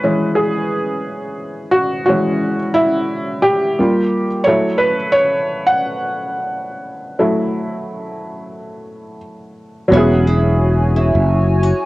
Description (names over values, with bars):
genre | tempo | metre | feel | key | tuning
lo-fi hip hop | 88 BPM | 4/4 | swing 60% on 16ths | unclear | A4 = 440 Hz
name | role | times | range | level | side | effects
felt-muted upright piano | accompaniment | 0.0-11.9 s | E3 to F#5 | -16 LUFS | equal | cassette tape
nylon-string guitar | melody | 9.9-11.9 s | E4 to F#4 | -20 LUFS | equal | cassette tape
hollow soft pad | sustained chords | 9.9-11.9 s | F#4 to G#5 | -22 LUFS | left 2 dB | chorus
sustaining fretless electric bass | bass | 9.9-11.7 s | E1 to F#1 | -14 LUFS | equal | none
room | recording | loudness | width
light reverb, studio ambience | home recording on cassette | -14 LUFS | side -19 dB against mid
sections
0.0-9.9 A section; 9.9-11.9 B section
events
felt piano solo 0.0-9.9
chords
0.0 E69; 3.8 Gm7; 4.5 F#m7; 9.9 E69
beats
0.37 1.05 | 1.73 2.42 3.10 3.78 | 4.46 5.14 5.83 6.51 | 7.19 7.87 8.55 9.23 | 9.92 10.60 11.28